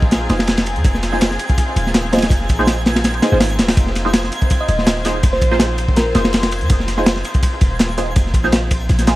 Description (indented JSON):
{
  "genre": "drum and bass, jungle",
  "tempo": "164 BPM",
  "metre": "4/4",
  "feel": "straight",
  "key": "F minor",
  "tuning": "A4 = 439 Hz",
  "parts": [
    { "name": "muted studio string section", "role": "sustained chords", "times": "0.0-9.2 s", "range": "C4 to C5", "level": "-26 LUFS", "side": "left 2 dB", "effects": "none" },
    { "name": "warm 808-style bass", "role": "bass", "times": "0.0-9.2 s", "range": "Eb1 to F2", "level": "-20 LUFS", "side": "equal", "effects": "none" },
    { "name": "crunchy breakbeat drum kit", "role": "drums", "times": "0.0-9.2 s", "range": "kick drum, ride cymbal, snare drum", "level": "-16 LUFS", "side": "equal", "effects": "none" },
    { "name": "twinkling granular texture", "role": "texture", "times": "0.0-9.2 s", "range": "Ab6", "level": "-30 LUFS", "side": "right 3 dB", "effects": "built-in reverb" },
    { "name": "breakbeat sampler-style drum kit", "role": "drums", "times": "0.1-9.2 s", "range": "hi-hat, snare drum", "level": "-29 LUFS", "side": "equal", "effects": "overdrive, high-pass filter on snare, high-pass filter on hats, high-pass filter on room" },
    { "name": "filtered dub chord stab", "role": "stabs", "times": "0.3-9.2 s", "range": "Eb4 to C5", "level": "-23 LUFS", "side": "right 1 dB", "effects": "phaser, ensemble chorus, dub echo" },
    { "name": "thumb-piano-like synth pluck", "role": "melody", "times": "4.6-6.3 s", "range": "Bb4 to Eb5", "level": "-24 LUFS", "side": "right 1 dB", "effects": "chorus, dub echo" }
  ],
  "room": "small room ambience",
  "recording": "vinyl crackle",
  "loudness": "-14 LUFS",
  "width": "side -17 dB against mid",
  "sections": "0.0-9.2 A section",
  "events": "none",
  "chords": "0.0 Fm7",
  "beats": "0.11 0.48 | 0.84 1.21 1.58 1.94 | 2.31 2.67 3.04 3.41 | 3.77 4.14 4.50 4.87 | 5.24 5.60 5.97 6.33 | 6.70 7.06 7.43 7.80 | 8.16 8.53 8.89"
}